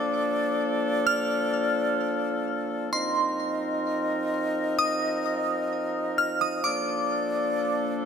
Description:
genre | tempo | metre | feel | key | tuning
hip hop | free time | none | none | unclear | A4 = 440 Hz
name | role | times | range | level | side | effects
glassy synth bell | melody | 0.0-8.1 s | C6 to F6 | -29 LUFS | right 1 dB | chorus, phaser, ping-pong delay
clear woodwind section | sustained chords | 0.0-8.1 s | F3 to Eb5 | -26 LUFS | equal | none
room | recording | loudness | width
moderate lush hall reverb, RT60 2.8 s | none | -24 LUFS | side -7 dB against mid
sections
0.0-2.9 A section; 2.9-8.1 B section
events
none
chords
0.0 Bbmaj7; 2.9 F7sus4; 6.6 Bbmaj7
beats
free time

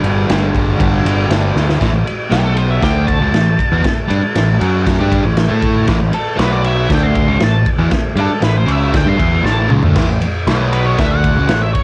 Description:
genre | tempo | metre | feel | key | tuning
garage rock duo or trio | 118 BPM | 4/4 | straight | A mixolydian | A4 = 442 Hz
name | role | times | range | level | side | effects
fuzz guitar | riff | 0.0-11.7 s | G2 to A4 | -21 LUFS | equal | distortion
growling picked electric bass | bass | 0.0-11.7 s | G1 to A2 | -18 LUFS | equal | overdrive
raw garage drum kit | drums | 0.0-11.8 s | crash cymbal, kick drum, ride cymbal, snare drum, toms | -19 LUFS | equal | cassette tape
octave-fuzz lead guitar | melody | 2.3-11.8 s | G4 to C6 | -23 LUFS | equal | distortion, cassette tape
room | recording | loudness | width
studio reverb | home recording on cassette | -14 LUFS | mono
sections
0.0-1.8 A section; 1.8-11.8 B section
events
drum fill 1.6, 9.5-10.0; lead electric guitar solo 1.8-11.8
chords
0.0 G5; 1.8 A5; 2.3 B5; 2.8 A; 6.4 B5; 6.9 A; 10.5 B5; 11.0 A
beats
0.28 0.79 1.30 | 1.80 2.31 2.82 3.33 | 3.84 4.35 4.86 5.37 | 5.88 6.39 6.90 7.41 | 7.92 8.43 8.94 9.45 | 9.96 10.47 10.98 11.50

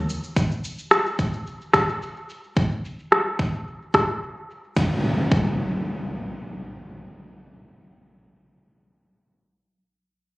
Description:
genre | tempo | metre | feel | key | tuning
sunset chillout | 109 BPM | 4/4 | straight | none | none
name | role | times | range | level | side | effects
electronic shaker and rim click | drums | 0.1-4.7 s | none | -20 LUFS | equal | low-pass filter on perc, small room ambience, low-pass filter on snare
electronic kick drum | drums | 0.4-5.5 s | none | -22 LUFS | equal | small room ambience
impact | sound effects | 4.8-8.5 s | none | -25 LUFS | equal | none
room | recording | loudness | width
moderate concert hall reverb, RT60 1.8 s | recorded on a phone in the room, studio reverb, compression | -21 LUFS | side -21 dB against mid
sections
0.0-4.8 A section; 4.8-7.0 B section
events
filter sweep on drum 0.0-4.8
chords
none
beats
| 0.36 0.91 1.46 2.01 | 2.56 3.11 3.66 4.21 | 4.76 5.31 5.86 6.41

